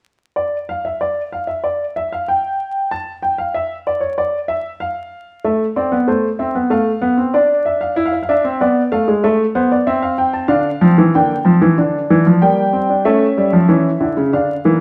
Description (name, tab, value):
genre	classical, baroque-style 3-part fugue for grand piano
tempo	94 BPM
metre	4/4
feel	straight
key	D minor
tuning	A4 = 440 Hz
part	warm grand piano	solo	0.4-14.8 s	C#3 to A5	-16 LUFS	equal	none
room	moderate stone room reverb, RT60 1.0 s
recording	heard from further back in the room, vinyl crackle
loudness	-16 LUFS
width	mono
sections	0.4-14.8 A section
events	none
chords	0.4 N.C.; 5.5 Am; 6.7 Dm/A; 8.0 E7; 9.2 Am; 10.5 Dm; 13.0 A